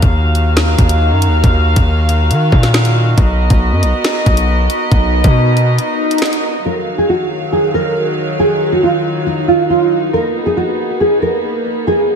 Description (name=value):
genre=hip hop, drill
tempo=138 BPM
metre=4/4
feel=half-time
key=Eb minor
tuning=A4 = 439 Hz
part: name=dark symphonic string section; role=sustained chords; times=0.0-12.2 s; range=Eb3 to F5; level=-18 LUFS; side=equal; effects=none
part: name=distorted 808-style bass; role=bass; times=0.0-5.8 s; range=B1 to Eb3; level=-12 LUFS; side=equal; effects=distortion
part: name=drill drum kit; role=drums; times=0.0-6.4 s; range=finger snaps, hi-hat, kick drum, snare drum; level=-15 LUFS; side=equal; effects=overdrive
part: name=swell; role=sound effects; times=4.4-6.7 s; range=none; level=-21 LUFS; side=equal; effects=none
part: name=nylon-string guitar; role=melody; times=6.7-12.2 s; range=Eb4 to Bb4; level=-13 LUFS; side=right 2 dB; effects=ensemble chorus, ping-pong delay
room=moderate lush hall reverb, RT60 1.9 s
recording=dreamy mix soaked in reverb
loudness=-11 LUFS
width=side -6 dB against mid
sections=0.0-6.7 A section; 6.7-12.2 B section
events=swell 4.4-6.7; break 5.8-6.7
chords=0.0 Ebmadd9; 3.2 Bmaj7; 6.7 Ebmadd9; 10.1 Bmaj7